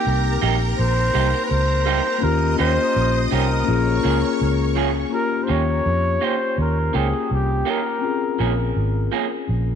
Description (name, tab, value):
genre	reggae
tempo	83 BPM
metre	4/4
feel	swing 56% on 16ths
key	unclear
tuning	A4 = 439 Hz
part	breathy flugelhorn	melody	0.0-8.8 s	G4 to Db5	-24 LUFS	equal	tape echo
part	string machine, violins	second line	0.0-5.1 s	Bb4 to Eb6	-29 LUFS	right 1 dB	ensemble chorus
part	mellow tine electric piano	accompaniment	0.0-9.8 s	Bb3 to G5	-25 LUFS	left 11 dB	medium stereo tremolo, tape echo
part	vintage muted fingered electric bass	bass	0.1-9.8 s	Ab1 to F2	-21 LUFS	right 1 dB	none
part	electric guitar through a small old amp	stabs	0.4-9.2 s	Eb3 to Ab4	-27 LUFS	right 10 dB	none
room	moderate echo chamber reverb, RT60 2.2 s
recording	1960s-style stereo with parts hard left and right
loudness	-18 LUFS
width	side -8 dB against mid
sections	0.0-5.1 A section; 5.1-9.8 B section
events	none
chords	0.0 Cm7; 2.2 Eb7; 3.7 Bbm7; 5.1 Eb7; 8.0 Bbm7